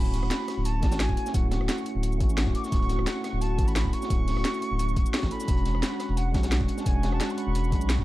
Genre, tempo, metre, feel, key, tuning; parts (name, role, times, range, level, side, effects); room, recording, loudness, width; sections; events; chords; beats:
liquid drum and bass; 174 BPM; 4/4; straight; D lydian; A4 = 440 Hz
silver concert flute; melody; 0.0-8.0 s; F#5 to D6; -35 LUFS; right 2 dB; dub echo
mellow tine electric piano; accompaniment; 0.0-8.0 s; G#3 to A4; -32 LUFS; right 1 dB; medium stereo tremolo, tape echo
warm analog pad; sustained chords; 0.0-8.0 s; F#4 to C#6; -38 LUFS; left 4 dB; chorus, tremolo, sidechain pumping
saturated sub bass; bass; 0.0-8.0 s; D1 to B1; -27 LUFS; equal
crunchy breakbeat drum kit; drums; 0.1-8.0 s; hi-hat, snare drum; -38 LUFS; equal; high-pass filter on hats, high-pass filter on snare, high-pass filter on room
drum and bass drum kit; drums; 0.1-8.0 s; hi-hat, rim click, shaker, snare drum; -32 LUFS; equal; overdrive
electronic kick drum; drums; 0.8-8.0 s; -26 LUFS; equal; overdrive
digital ambience; dark, warm production; -24 LUFS; side -17 dB against mid
0.0-8.0 A section
0.0 Dmaj7; 5.5 E13
0.31 0.65 1.00 | 1.34 1.69 2.03 2.38 | 2.72 3.07 3.41 3.76 | 4.10 4.45 4.79 5.14 | 5.48 5.83 6.17 6.52 | 6.86 7.21 7.55 7.90